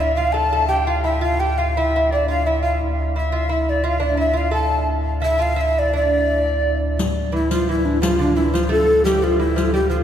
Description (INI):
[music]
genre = medieval dance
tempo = 173 BPM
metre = 3/4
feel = straight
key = D minor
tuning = A4 = 435 Hz
[part]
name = breathy mellow tenor recorder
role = melody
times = 0.0-10.0 s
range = D4 to A5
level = -20 LUFS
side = equal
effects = none
[part]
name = lute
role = second line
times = 0.0-10.0 s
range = D3 to A4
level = -25 LUFS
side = right 3 dB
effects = none
[part]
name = tenor recorder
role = second line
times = 0.0-10.0 s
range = E4 to A5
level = -25 LUFS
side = left 3 dB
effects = none
[part]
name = pipe organ, stopped flute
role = drone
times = 0.0-10.0 s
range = D2 to A2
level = -22 LUFS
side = equal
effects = none
[part]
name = riq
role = percussion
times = 7.0-9.7 s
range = none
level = -25 LUFS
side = left 4 dB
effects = none
[sound]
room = wet cathedral reverb, RT60 5.1 s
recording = heard from further back in the room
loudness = -17 LUFS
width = side -9 dB against mid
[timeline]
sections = 0.0-7.0 A section; 7.0-10.0 A section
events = none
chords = none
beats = 0.01 0.36 | 0.71 1.06 1.41 | 1.76 2.11 2.46 | 2.81 3.16 3.51 | 3.86 4.21 4.56 | 4.91 5.25 5.60 | 5.95 6.30 6.64 | 6.99 7.33 7.68 | 8.02 8.37 8.71 | 9.05 9.40 9.74